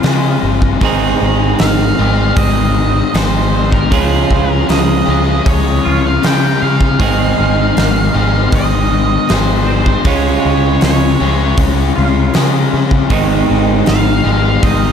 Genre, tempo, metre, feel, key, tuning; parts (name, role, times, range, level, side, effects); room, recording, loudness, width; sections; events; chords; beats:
rock, shoegaze and dream pop; 78 BPM; 4/4; straight; Ab major; A4 = 440 Hz
twangy electric guitar; arpeggios; 0.0-14.9 s; Eb3 to F4; -23 LUFS; equal; ensemble chorus, analog delay
overdriven electric guitar; riff; 0.0-14.9 s; Ab2 to Ab4; -17 LUFS; left 10 dB; wide subtle chorus
overdriven electric guitar; riff; 0.0-14.9 s; Ab2 to Ab4; -18 LUFS; right 6 dB; reverse reverb
fuzz picked electric bass; bass; 0.0-14.9 s; G1 to Db3; -16 LUFS; equal; overdrive
huge arena drum kit; drums; 0.0-14.8 s; hi-hat, kick drum, snare drum; -18 LUFS; right 1 dB
octave-fuzz lead guitar; melody; 1.6-14.9 s; Bb4 to G5; -20 LUFS; right 2 dB; distortion, analog delay
moderate huge ambient reverb, RT60 7.4 s; dreamy mix soaked in reverb; -10 LUFS; side -7 dB against mid
0.0-14.9 A section
0.0 Db; 0.8 Ab; 3.9 Dbmaj7; 7.0 Ab; 10.1 Db; 13.1 Ab
0.04 | 0.82 1.59 2.37 3.14 | 3.91 4.68 5.45 6.22 | 6.99 7.76 8.53 9.29 | 10.05 10.82 11.58 12.35 | 13.11 13.87 14.64